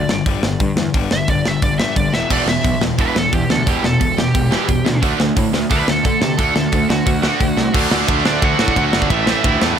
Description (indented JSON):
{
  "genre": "punk rock",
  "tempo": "176 BPM",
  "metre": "4/4",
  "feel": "straight",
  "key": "unclear",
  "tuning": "A4 = 441 Hz",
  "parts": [
    { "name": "high-gain lead guitar", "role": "melody", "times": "0.0-9.6 s", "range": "D4 to F#5", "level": "-22 LUFS", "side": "right 1 dB", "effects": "distortion, ping-pong delay" },
    { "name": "distorted electric guitar", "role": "riff", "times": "0.0-9.8 s", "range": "E2 to D4", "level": "-21 LUFS", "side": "left 10 dB", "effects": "distortion" },
    { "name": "fuzz picked electric bass", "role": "bass", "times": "0.0-9.7 s", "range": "E1 to D3", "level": "-22 LUFS", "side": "equal", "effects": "overdrive" },
    { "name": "tight metal drum kit", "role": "drums", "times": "0.1-9.7 s", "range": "crash cymbal, hi-hat, kick drum, ride cymbal, snare drum, splash cymbal", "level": "-19 LUFS", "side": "equal", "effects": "none" },
    { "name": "tight distorted guitar", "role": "riff", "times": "2.3-9.8 s", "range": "E2 to D4", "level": "-20 LUFS", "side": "right 15 dB", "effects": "distortion" }
  ],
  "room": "little or no reverb",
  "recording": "none",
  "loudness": "-14 LUFS",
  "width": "side -8 dB against mid",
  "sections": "0.0-7.7 A section; 7.7-9.8 B section",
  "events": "lead electric guitar solo 0.0-7.7; drum fill 2.1, 7.6",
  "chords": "0.0 G5; 2.1 Em; 5.0 D; 9.1 A5",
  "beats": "0.26 0.60 | 0.94 1.28 1.62 1.96 | 2.30 2.64 2.98 3.32 | 3.66 4.00 4.34 4.68 | 5.03 5.37 5.71 6.05 | 6.39 6.72 7.07 7.41 | 7.74 8.08 8.42 8.76 | 9.10 9.44 9.78"
}